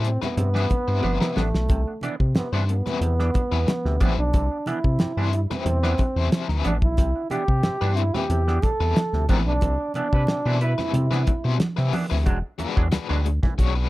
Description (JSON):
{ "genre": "funk", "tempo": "91 BPM", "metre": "4/4", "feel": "straight", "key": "unclear", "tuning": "A4 = 440 Hz", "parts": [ { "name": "biting overdriven guitar", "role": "accompaniment", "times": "0.0-13.9 s", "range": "G3 to C#5", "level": "-29 LUFS", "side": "left 8 dB", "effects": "tremolo" }, { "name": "overdriven clav", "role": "stabs", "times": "0.0-13.5 s", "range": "C3 to D4", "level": "-32 LUFS", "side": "right 3 dB", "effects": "phaser" }, { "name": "round analog bass", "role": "bass", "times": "0.0-13.9 s", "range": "E1 to C3", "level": "-22 LUFS", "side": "equal", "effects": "none" }, { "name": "cloth-damped thuddy drum kit", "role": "drums", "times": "0.0-13.8 s", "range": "hi-hat, kick drum, snare drum", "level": "-23 LUFS", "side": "equal", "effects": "none" }, { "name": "warm trombone", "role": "melody", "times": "0.1-11.6 s", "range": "A3 to A4", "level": "-27 LUFS", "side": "right 2 dB", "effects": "slapback echo" }, { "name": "congas", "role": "percussion", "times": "0.2-13.6 s", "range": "none", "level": "-31 LUFS", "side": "right 3 dB", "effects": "none" }, { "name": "clear horn section", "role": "second line", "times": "10.1-10.7 s", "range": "G3 to B4", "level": "-32 LUFS", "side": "equal", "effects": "none" } ], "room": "little or no reverb", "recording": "dry, close 1970s-style studio recording", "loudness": "-20 LUFS", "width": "side -18 dB against mid", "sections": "0.0-12.3 A section; 12.3-13.9 B section", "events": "drum fill 1.0-1.7; band accent 9.6-12.3", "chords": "0.0 Cmaj7; 12.3 E9", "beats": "0.38 1.04 | 1.70 2.36 3.02 3.68 | 4.34 5.00 5.66 6.32 | 6.98 7.64 8.30 8.97 | 9.63 10.29 10.95 11.61 | 12.27 12.93 13.59" }